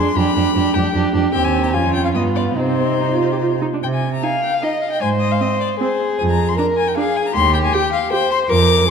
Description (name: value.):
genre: quick classical-period movement for string quartet.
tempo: 153 BPM.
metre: 3/4.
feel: rubato.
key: C minor.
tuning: A4 = 440 Hz.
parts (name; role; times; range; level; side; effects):
clear violin; melody; 0.0-8.9 s; C5 to D6; -21 LUFS; left 8 dB; none.
dark violin; second line; 0.0-8.9 s; Eb4 to F5; -21 LUFS; left 1 dB; none.
warm viola; accompaniment; 0.0-8.2 s; B3 to G4; -22 LUFS; right 4 dB; none.
dark cello; bass; 0.0-8.8 s; Eb2 to C3; -20 LUFS; right 3 dB; none.
room: moderate concert hall reverb, RT60 2.2 s.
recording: dark, warm production.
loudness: -15 LUFS.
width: side -6 dB against mid.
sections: 0.0-3.8 A section; 3.8-8.9 B section.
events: none.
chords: 0.2 G7/F; 1.3 Cm/Eb; 1.7 Db/F; 2.1 G7; 2.6 Cm; 5.0 Ab; 6.2 Ddim/F; 7.4 Cm/Eb.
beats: | 0.16 0.55 0.94 | 1.33 1.73 2.13 | 2.56 2.99 3.41 | 3.83 4.23 4.62 | 5.01 5.40 5.80 | 6.19 6.58 6.97 | 7.36 7.74 8.12 | 8.50 8.89.